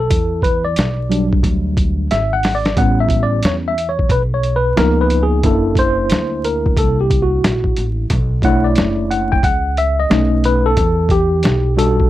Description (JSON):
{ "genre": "hip hop, jazz-hop", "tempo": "90 BPM", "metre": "4/4", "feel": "swing 62% on 16ths", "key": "E dorian", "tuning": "A4 = 441 Hz", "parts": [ { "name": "mellow tine electric piano", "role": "accompaniment", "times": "0.0-12.1 s", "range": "E#3 to G5", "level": "-16 LUFS", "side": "left 1 dB", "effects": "overdrive, fast stereo tremolo" }, { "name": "upright bass", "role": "bass", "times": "0.0-12.1 s", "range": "F#1 to E2", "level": "-18 LUFS", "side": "equal", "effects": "none" }, { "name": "boom bap sampler-style drum kit", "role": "drums", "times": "0.1-12.1 s", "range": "hi-hat, kick drum, snare drum", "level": "-18 LUFS", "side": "equal", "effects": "none" } ], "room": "little or no reverb", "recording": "dry, close 1970s-style studio recording, vinyl crackle", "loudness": "-13 LUFS", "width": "side -14 dB against mid", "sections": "0.0-12.1 A section", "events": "tine electric piano solo 0.0-12.1; drum fill 2.1-2.8", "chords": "0.1 Em9; 2.8 A9; 4.8 C#13; 5.4 F#7alt; 8.1 Bm11; 10.1 B7; 10.8 Em9" }